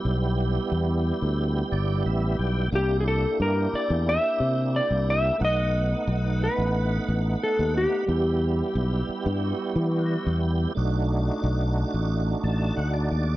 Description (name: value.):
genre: straight-eighth soul blues.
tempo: 90 BPM.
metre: 4/4.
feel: straight.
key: E minor.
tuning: A4 = 439 Hz.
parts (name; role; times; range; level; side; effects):
tonewheel organ; accompaniment; 0.0-13.4 s; G3 to A5; -29 LUFS; right 3 dB; overdrive, chorus vibrato, slow rotary speaker.
fingered electric bass; bass; 0.0-13.4 s; G1 to E3; -24 LUFS; equal; none.
clean lap steel guitar; melody; 2.8-10.4 s; G4 to E5; -26 LUFS; left 1 dB; none.
room: little or no reverb.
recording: dry, close 1970s-style studio recording.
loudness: -22 LUFS.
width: side -16 dB against mid.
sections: 0.0-13.4 A section.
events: tonewheel organ fill 1.4-2.7, 12.1-13.4.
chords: 0.0 Em; 2.7 C7; 5.4 B7; 8.1 Em; 10.8 B7#9.